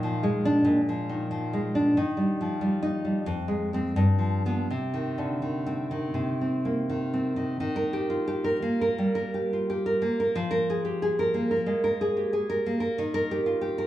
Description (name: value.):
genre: romantic piece for solo classical guitar.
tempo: 80-96 BPM.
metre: 4/4.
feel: rubato.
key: C minor, Eb major from 7.6 s.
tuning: A4 = 437 Hz.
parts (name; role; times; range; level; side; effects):
nylon-string guitar; solo; 0.0-13.9 s; F2 to Bb4; -24 LUFS; equal; none.
room: moderate recital hall reverb, RT60 1.5 s.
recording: small room ambience.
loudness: -24 LUFS.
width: side -13 dB against mid.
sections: 0.0-7.6 A section; 7.6-13.9 B section.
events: none.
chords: 0.0 Bb7; 2.0 Eb; 3.3 Fm; 3.9 G7; 4.7 Cm; 7.6 Eb; 10.4 Bb5/F; 13.0 Eb.